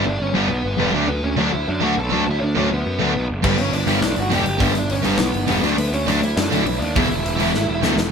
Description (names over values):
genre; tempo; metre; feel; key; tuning
punk rock; 205 BPM; 4/4; straight; unclear; A4 = 440 Hz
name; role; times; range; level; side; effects
dark smooth lead guitar; melody; 0.0-7.8 s; B3 to A5; -24 LUFS; right 1 dB; overdrive
distorted electric guitar; riff; 0.0-7.9 s; E2 to D4; -24 LUFS; right 7 dB; overdrive
sludgy distorted guitar; riff; 0.0-8.0 s; G2 to E4; -24 LUFS; left 6 dB; overdrive
fuzz picked electric bass; bass; 0.0-8.1 s; E1 to F#2; -23 LUFS; equal; overdrive
tight metal drum kit; drums; 3.4-8.0 s; crash cymbal, hi-hat, kick drum, snare drum; -23 LUFS; left 1 dB; none
room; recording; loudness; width
moderate stone room reverb, RT60 1.4 s; band playing live in one room; -17 LUFS; side -6 dB against mid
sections
0.0-8.1 A section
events
half time 0.0-8.1; drum fill 7.5-8.1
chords
0.0 G; 0.9 D; 3.4 G; 5.6 D; 7.0 E